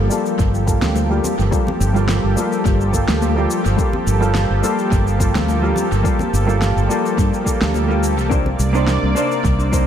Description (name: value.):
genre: sunset chillout.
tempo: 106 BPM.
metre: 4/4.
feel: swing 53% on 16ths.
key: G minor.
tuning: A4 = 440 Hz.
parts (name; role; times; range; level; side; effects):
vintage hollow-body jazz guitar; accompaniment; 0.0-9.9 s; G3 to C5; -21 LUFS; moving between left 4 dB and right 3 dB; auto-pan, low-pass filter, analog delay.
lush unison pad; sustained chords; 0.0-9.9 s; C3 to D5; -22 LUFS; equal; chorus.
fretless electric bass; bass; 0.0-9.8 s; G1 to G2; -18 LUFS; equal; ensemble chorus.
electronic cabasa and snare drum; drums; 0.1-9.9 s; none; -26 LUFS; equal; tape echo.
electronic kick drum; drums; 0.4-9.8 s; none; -19 LUFS; equal; none.
congas; percussion; 0.8-8.6 s; none; -28 LUFS; left 3 dB; none.
room: light reverb, digital ambience.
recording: echo-heavy mix.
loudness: -15 LUFS.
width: side -9 dB against mid.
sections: 0.0-9.9 A section.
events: filter sweep on hollow-body jazz guitar 0.0-9.9.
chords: 0.0 Gm9; 8.3 Cm9.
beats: 0.39 0.95 | 1.52 2.09 2.65 3.22 | 3.79 4.35 4.92 5.48 | 6.05 6.62 7.18 7.75 | 8.31 8.88 9.45.